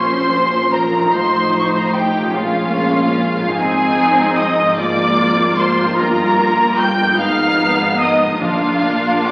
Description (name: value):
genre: classical, slow romantic movement for symphony orchestra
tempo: 49 BPM (dotted quarters)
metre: 6/8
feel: rubato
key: unclear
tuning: A4 = 440 Hz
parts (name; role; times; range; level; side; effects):
- warm symphonic violin section; melody; 0.0-9.3 s; F5 to G6; -20 LUFS; equal; none
- rich symphonic violin section; second line; 0.0-9.3 s; F4 to G5; -22 LUFS; equal; none
- warm symphonic viola section; accompaniment; 0.0-9.3 s; F3 to F4; -21 LUFS; equal; none
- concert harp; arpeggios; 0.0-9.3 s; G2 to C5; -28 LUFS; equal; none
- dark symphonic cello section; bass; 0.0-9.3 s; G2 to Bb2; -28 LUFS; equal; none
- rich symphonic double bass section; bass; 0.0-9.3 s; G1 to Bb1; -30 LUFS; equal; none
- timpani; percussion; 8.4-9.3 s; Bb2; -29 LUFS; equal; none
room: wet scoring stage reverb, RT60 1.9 s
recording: very old 78 rpm record, vinyl crackle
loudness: -16 LUFS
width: mono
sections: 0.0-9.3 A section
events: none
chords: 0.0 Bbm; 1.1 F7/A; 2.4 Bbm7; 3.6 Fm7/Ab; 4.8 Bb7/Ab; 6.0 Eb/G; 7.2 Fm7b5/Ab; 8.4 Bb